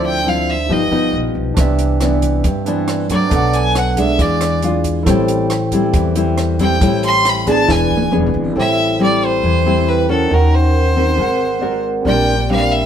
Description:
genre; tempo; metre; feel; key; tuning
bossa nova; 137 BPM; 4/4; straight; A minor; A4 = 440 Hz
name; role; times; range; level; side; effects
barky tine electric piano; accompaniment; 0.0-12.9 s; C4 to G#5; -22 LUFS; right 4 dB; none
nylon-string guitar; accompaniment; 0.0-12.9 s; G2 to Bb4; -17 LUFS; left 2 dB; none
upright bass; bass; 0.0-12.9 s; D1 to G2; -19 LUFS; equal; none
clear violin; melody; 0.1-12.9 s; A4 to C6; -18 LUFS; equal; none
compact cocktail drum kit; drums; 1.6-8.4 s; hi-hat, kick drum, rim click, snare drum, toms; -20 LUFS; right 1 dB; none
room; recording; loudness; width
moderate stone room reverb, RT60 1.0 s; band playing live in one room; -13 LUFS; side -9 dB against mid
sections
0.0-8.6 A section; 8.6-12.9 B section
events
violin solo 0.0-8.6; drum fill 7.7-8.6; tine electric piano fill 11.4-12.1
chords
0.0 Dm9; 0.7 G7alt; 1.6 Cmaj9; 3.3 Bm7; 4.2 E7b9; 5.1 Am7; 7.7 E7; 8.6 Am7; 10.3 D#m7; 11.2 G#9; 12.1 Bb69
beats
0.26 0.69 1.13 | 1.57 2.00 2.44 2.88 | 3.32 3.75 4.19 4.63 | 5.06 5.50 5.94 6.37 | 6.81 7.25 7.68 8.12 | 8.56 9.00 9.43 9.87 | 10.31 10.74 11.18 11.62 | 12.05 12.49

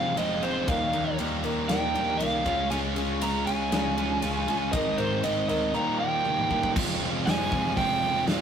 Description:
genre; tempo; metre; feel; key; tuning
quiet-loud alternative rock; 119 BPM; 4/4; straight; F minor; A4 = 439 Hz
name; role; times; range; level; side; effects
biting lead guitar; melody; 0.0-8.2 s; C5 to Bb5; -28 LUFS; right 2 dB; overdrive, tape echo
picked steel-string acoustic guitar; arpeggios; 0.0-6.7 s; Db3 to Bb4; -33 LUFS; left 4 dB; none
sludgy distorted guitar; riff; 0.0-8.4 s; F2 to F4; -30 LUFS; right 4 dB; overdrive
thick fuzz guitar; riff; 0.0-8.4 s; Ab2 to F4; -33 LUFS; left 4 dB; distortion
overdriven picked electric bass; bass; 0.0-8.4 s; F1 to F2; -38 LUFS; equal; none
huge arena drum kit; drums; 0.2-8.4 s; crash cymbal, hi-hat, kick drum, ride cymbal, snare drum, toms; -32 LUFS; equal; none
room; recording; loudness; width
moderate small room reverb, RT60 0.5 s; rough rehearsal-room recording, warm saturation; -24 LUFS; side -8 dB against mid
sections
0.0-6.8 A section; 6.8-8.4 B section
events
half time 0.0-6.8; lead electric guitar solo 0.0-6.8; drum fill 6.2-6.8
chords
0.0 Fm7; 0.7 Ebadd9; 2.5 Db; 4.7 Abadd9; 5.7 Ebadd9; 6.8 Fm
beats
0.17 | 0.68 1.19 1.70 2.20 | 2.71 3.21 3.72 4.23 | 4.73 5.24 5.75 6.25 | 6.75 7.26 7.76 8.27

